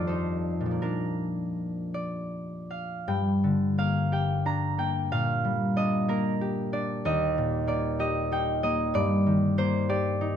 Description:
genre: classical, solo harp piece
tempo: 50-64 BPM (dotted quarters)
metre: 6/8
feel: rubato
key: Bb major, G minor from 3.1 s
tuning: A4 = 440 Hz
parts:
  - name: concert harp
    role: solo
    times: 0.0-10.4 s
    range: Eb2 to Bb5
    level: -25 LUFS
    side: equal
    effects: none
room: light reverb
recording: dark, warm production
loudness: -25 LUFS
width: side -8 dB against mid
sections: 0.0-3.1 A section; 3.1-10.4 B section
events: none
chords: 0.0 F7; 0.8 Bb; 3.1 Gm; 5.1 Gm/Bb; 7.0 Eb; 8.9 Eb/G

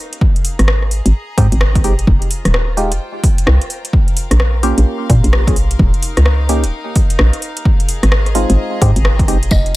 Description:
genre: UK garage, two-step garage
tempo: 129 BPM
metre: 4/4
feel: swing 63% on 16ths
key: unclear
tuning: A4 = 440 Hz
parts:
  - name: rich studio string section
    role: texture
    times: 0.0-9.8 s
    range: Eb4 to C6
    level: -30 LUFS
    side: left 2 dB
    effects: sidechain pumping
  - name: house drum kit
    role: drums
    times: 0.1-9.7 s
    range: hi-hat, rim click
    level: -20 LUFS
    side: left 1 dB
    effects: overdrive
  - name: electronic kick drum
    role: drums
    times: 0.2-9.6 s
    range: none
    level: -13 LUFS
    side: equal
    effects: overdrive
  - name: hollow knocking FM bass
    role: bass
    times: 0.6-9.6 s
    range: Eb1 to Bb2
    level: -12 LUFS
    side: equal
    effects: none
  - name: percussive organ stab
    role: stabs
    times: 1.4-9.4 s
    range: Ab3 to Ab4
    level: -21 LUFS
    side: right 1 dB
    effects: chorus, phaser, analog delay
  - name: mallet-like synth pluck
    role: melody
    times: 9.5-9.7 s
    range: Eb5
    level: -21 LUFS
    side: right 3 dB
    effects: chorus
  - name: tambourine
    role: percussion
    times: 9.5-9.6 s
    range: none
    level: -21 LUFS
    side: left 4 dB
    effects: none
room: digital ambience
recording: echo-heavy mix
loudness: -11 LUFS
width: side -18 dB against mid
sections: 0.0-9.8 A section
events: none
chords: 0.2 Abmaj7; 2.1 Fm9; 3.7 Bbm; 5.8 Eb7; 7.7 Abmaj7

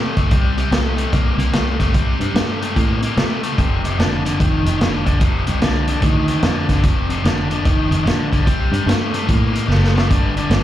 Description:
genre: electric blues shuffle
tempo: 147 BPM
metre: 4/4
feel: swing 64% on 8ths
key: unclear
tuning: A4 = 441 Hz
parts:
  - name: biting overdriven guitar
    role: riff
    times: 0.0-10.6 s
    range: F2 to Bb3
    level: -20 LUFS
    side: left 2 dB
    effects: slapback echo
  - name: fingered electric bass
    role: bass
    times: 0.0-10.6 s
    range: F1 to C3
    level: -20 LUFS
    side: equal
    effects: none
  - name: vintage drum kit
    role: drums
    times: 0.2-10.6 s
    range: hi-hat, kick drum, snare drum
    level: -19 LUFS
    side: equal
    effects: none
room: small room ambience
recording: live gig heard through the venue's PA, club reverb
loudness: -15 LUFS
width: side -12 dB against mid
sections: 0.0-10.6 A section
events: drum fill 9.7-10.1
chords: 0.0 C5; 3.6 F5; 8.5 C5; 10.1 G5

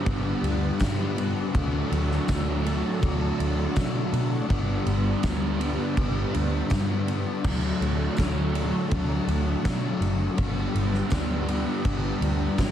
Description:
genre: rock, shoegaze and dream pop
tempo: 82 BPM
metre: 4/4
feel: straight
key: D major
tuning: A4 = 441 Hz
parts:
  - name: string machine, violins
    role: sustained chords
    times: 0.0-12.7 s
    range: D4 to F#5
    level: -36 LUFS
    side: equal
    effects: ensemble chorus, plate reverb
  - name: mellow electric guitar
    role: arpeggios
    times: 0.0-12.7 s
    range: F#3 to D4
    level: -36 LUFS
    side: right 1 dB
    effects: none
  - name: crunchy overdriven guitar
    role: riff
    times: 0.0-12.7 s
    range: G2 to D4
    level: -31 LUFS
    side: right 7 dB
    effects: reverse reverb
  - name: overdriven semi-hollow guitar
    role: riff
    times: 0.0-12.7 s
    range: G2 to D4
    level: -30 LUFS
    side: left 7 dB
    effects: lush chorus
  - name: vintage muted picked electric bass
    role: bass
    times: 0.1-12.7 s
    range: F#1 to B2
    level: -28 LUFS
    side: equal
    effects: none
  - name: huge arena drum kit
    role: drums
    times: 0.1-12.7 s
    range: crash cymbal, kick drum, ride cymbal, snare drum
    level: -29 LUFS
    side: equal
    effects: none
  - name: tambourine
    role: percussion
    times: 0.8-12.7 s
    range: none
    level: -48 LUFS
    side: right 6 dB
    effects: none
room: light reverb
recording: dense, heavily limited modern master, vinyl crackle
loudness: -23 LUFS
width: side -10 dB against mid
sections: 0.0-12.7 A section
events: none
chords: 0.0 Gmaj7; 1.5 Dmaj7; 4.5 Gmaj7; 7.4 Dmaj7; 10.4 Gmaj7

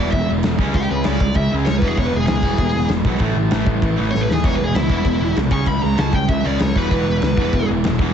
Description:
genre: punk rock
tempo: 194 BPM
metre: 4/4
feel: straight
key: E major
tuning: A4 = 436 Hz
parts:
  - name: high-gain lead guitar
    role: melody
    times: 0.0-7.7 s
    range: E4 to C#6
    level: -24 LUFS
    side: equal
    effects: distortion
  - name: raw garage guitar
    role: riff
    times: 0.0-8.0 s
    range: E2 to C#4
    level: -26 LUFS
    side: left 1 dB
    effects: overdrive
  - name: sludgy distorted guitar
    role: riff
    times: 0.0-8.1 s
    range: A2 to C#4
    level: -23 LUFS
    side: right 10 dB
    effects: overdrive
  - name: tight distorted guitar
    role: riff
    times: 0.0-8.1 s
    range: E2 to C#4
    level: -25 LUFS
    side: left 10 dB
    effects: distortion
  - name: fuzz picked electric bass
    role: bass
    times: 0.0-8.1 s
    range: E1 to D#2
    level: -22 LUFS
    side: equal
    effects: overdrive
  - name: big rock drum kit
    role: drums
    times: 0.1-8.1 s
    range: crash cymbal, kick drum, snare drum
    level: -21 LUFS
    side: equal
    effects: none
room: little or no reverb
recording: heavily compressed radio sound, nothing above 7.9 kHz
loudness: -16 LUFS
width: side -8 dB against mid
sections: 0.0-8.1 A section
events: lead electric guitar solo 0.0-8.1; drum fill 4.1-4.4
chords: 0.0 E; 0.6 C#5; 1.8 E; 3.2 A5; 4.4 E; 5.5 C#5; 6.8 E

